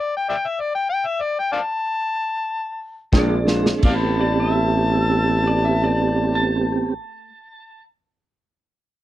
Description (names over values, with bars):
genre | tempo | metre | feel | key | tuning
straight-eighth soul blues | 83-102 BPM | 4/4 | straight | A minor | A4 = 445 Hz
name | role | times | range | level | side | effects
overdriven harmonica | melody | 0.0-7.0 s | D5 to A5 | -22 LUFS | left 3 dB | none
electric slide guitar | second line | 3.1-7.8 s | C5 to A5 | -28 LUFS | right 1 dB | none
percussive tonewheel organ | accompaniment | 3.1-6.9 s | B3 to Ab4 | -22 LUFS | right 4 dB | slow rotary speaker, chorus vibrato
electric guitar through a small old amp | stabs | 3.1-7.4 s | Bb2 to B4 | -29 LUFS | left 3 dB | none
warm tuba | bass | 3.1-6.9 s | A1 to Bb1 | -21 LUFS | equal | none
warm soul drum kit | drums | 3.1-4.0 s | crash cymbal, kick drum, snare drum | -18 LUFS | equal | none
room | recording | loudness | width
little or no reverb | dry, close 1970s-style studio recording | -18 LUFS | side -14 dB against mid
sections
0.0-3.8 A section; 3.8-6.7 B section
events
slowing down 0.0-3.8; stop 0.0-3.1; drum fill 3.1-3.8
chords
0.0 A7(no3); 3.1 Bb7; 3.8 Am9